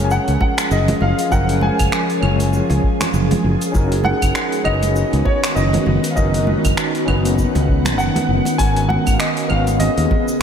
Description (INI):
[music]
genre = sunset chillout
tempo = 99 BPM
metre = 4/4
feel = swing 57% on 16ths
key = unclear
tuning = A4 = 442 Hz
[part]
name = warm concert grand piano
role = melody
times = 0.0-10.4 s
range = C#5 to G#5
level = -22 LUFS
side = left 1 dB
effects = analog chorus, tape echo
[part]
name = overdriven tine electric piano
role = accompaniment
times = 0.0-10.4 s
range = E#3 to C#5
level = -23 LUFS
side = moving between left 1 dB and right 6 dB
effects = medium tremolo, auto-pan, ping-pong delay
[part]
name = ethereal airy pad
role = sustained chords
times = 0.1-10.4 s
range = C#3 to F#5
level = -22 LUFS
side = equal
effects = ensemble chorus, built-in reverb, phaser
[part]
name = fretless electric bass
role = bass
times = 0.0-10.1 s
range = F#1 to D#2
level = -18 LUFS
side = equal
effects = lush chorus
[part]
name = deep house drum kit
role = drums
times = 0.1-10.4 s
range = cabasa, claves, finger snaps, hi-hat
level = -24 LUFS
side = right 1 dB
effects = overdrive
[part]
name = electronic kick drum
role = drums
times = 0.4-10.2 s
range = none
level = -20 LUFS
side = equal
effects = none
[part]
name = congas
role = percussion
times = 0.4-10.2 s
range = none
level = -26 LUFS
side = right 2 dB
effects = none
[sound]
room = moderate lush hall reverb, RT60 2.1 s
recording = dreamy mix soaked in reverb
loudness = -14 LUFS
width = side -8 dB against mid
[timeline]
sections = 0.0-8.6 A section; 8.6-10.4 A section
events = none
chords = 0.0 F#maj9; 3.7 Bmaj7/F#; 8.6 G#m11